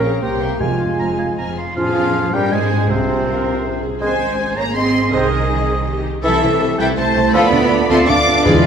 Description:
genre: classical, dramatic, fast romantic movement for symphony orchestra.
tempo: 161 BPM.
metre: 3/4.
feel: straight.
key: F minor.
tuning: A4 = 440 Hz.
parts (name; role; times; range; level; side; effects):
warm symphonic violin section; melody; 0.0-8.7 s; C5 to F6; -25 LUFS; left 5 dB; none.
clear clarinet; second line; 0.0-8.6 s; C4 to C5; -26 LUFS; equal; none.
clear oboe; second line; 0.0-8.7 s; C5 to D6; -24 LUFS; equal; none.
dark symphonic violin section; second line; 0.0-8.7 s; A3 to C6; -24 LUFS; left 3 dB; none.
mellow bassoon; accompaniment; 0.0-8.6 s; C3 to Db4; -25 LUFS; right 2 dB; none.
warm symphonic viola section; accompaniment; 0.0-8.7 s; Ab3 to D5; -26 LUFS; right 1 dB; none.
mellow French horn section; sustained chords; 0.0-8.7 s; C3 to Ab4; -24 LUFS; left 1 dB; none.
warm studio double bass section; bass; 0.0-8.7 s; F1 to Ab2; -23 LUFS; right 2 dB; none.
warm symphonic cello section; bass; 0.0-8.7 s; F2 to D4; -22 LUFS; right 4 dB; none.
flute section; second line; 0.2-8.7 s; F4 to Ab5; -24 LUFS; right 1 dB; none.
timpani; percussion; 0.6-1.1, 8.5-8.7 s; E2 to F2; -22 LUFS; left 1 dB; none.
clear trombone section; sustained chords; 1.8-8.7 s; C3 to C4; -25 LUFS; right 3 dB; none.
tam-tam; percussion; 1.8-3.2 s; none; -29 LUFS; left 3 dB; none.
room: wet concert hall reverb, RT60 2.1 s.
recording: minimal, uncompressed stereo recording.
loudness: -14 LUFS.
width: side -7 dB against mid.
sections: 0.0-1.8 A section; 1.8-8.7 B section.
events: band accent 1.8-2.2.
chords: 0.2 C7b9; 0.6 Fm; 2.9 Fm/C; 4.0 Ab; 5.1 Ab/C; 6.2 Am/C; 7.3 Bm7b5/D.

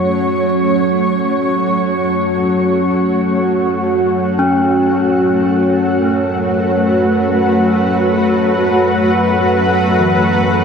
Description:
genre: dark ambient drone.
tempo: free time.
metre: none.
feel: none.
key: F# minor.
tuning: A4 = 438 Hz.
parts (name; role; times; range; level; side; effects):
granular cloud pad; sustained chords; 0.0-10.6 s; A3 to F#5; -15 LUFS; equal; built-in reverb.
overtone-sweeping drone; drone; 0.0-10.6 s; F#2 to F#3; -16 LUFS; right 1 dB; chorus, built-in reverb.
gamelan-type bronze metallophone; arpeggios; 4.4-10.6 s; E3 to C#4; -20 LUFS; left 2 dB; diffuse ambient delay.
room: wet huge ambient reverb, RT60 7.8 s.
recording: none.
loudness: -12 LUFS.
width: side -6 dB against mid.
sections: 0.0-10.6 A section.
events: none.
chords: 0.0 F#m.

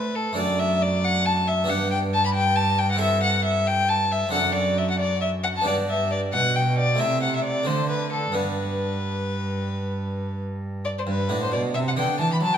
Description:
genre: classical, baroque-style sonata movement with continuo.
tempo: 90 BPM (dotted quarters).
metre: 12/8.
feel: straight.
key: G major.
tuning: A4 = 438 Hz.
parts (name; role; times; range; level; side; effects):
warm violin; melody; 0.0-12.6 s; A4 to B5; -23 LUFS; left 2 dB; none.
harpsichord; accompaniment; 0.0-12.6 s; F#2 to A4; -29 LUFS; right 2 dB; none.
warm cello; bass; 0.0-12.6 s; F#2 to A3; -26 LUFS; right 2 dB; none.
room: wet recital hall reverb, RT60 1.6 s.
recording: minimal, uncompressed stereo recording.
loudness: -21 LUFS.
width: side -8 dB against mid.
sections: 0.0-11.1 A section; 11.1-12.6 B section.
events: none.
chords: 0.4 D/F#; 1.7 G; 3.0 Am7/G; 4.3 D7/F#; 5.7 G; 7.0 Am/C; 7.7 D5; 8.3 G.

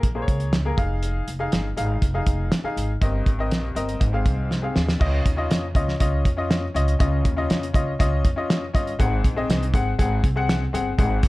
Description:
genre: uptempo 1960s-style soul.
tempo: 120 BPM.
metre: 4/4.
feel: straight.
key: unclear.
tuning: A4 = 440 Hz.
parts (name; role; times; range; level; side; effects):
bright upright piano; accompaniment; 0.0-11.3 s; G2 to Gb5; -26 LUFS; left 3 dB; none.
upright bass; bass; 0.0-11.3 s; F1 to F2; -24 LUFS; equal; none.
cloth-damped thuddy drum kit; drums; 0.0-11.3 s; crash cymbal, hi-hat, kick drum, snare drum; -22 LUFS; equal; none.
room: little or no reverb.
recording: dark, warm production.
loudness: -20 LUFS.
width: side -19 dB against mid.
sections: 0.0-5.0 A section; 5.0-11.3 B section.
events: drum fill 4.5-5.0.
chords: 0.0 Bbm7; 0.8 Fm7; 3.0 Cm7/G; 4.0 Ab6; 5.0 Dbadd9; 9.0 Ab7.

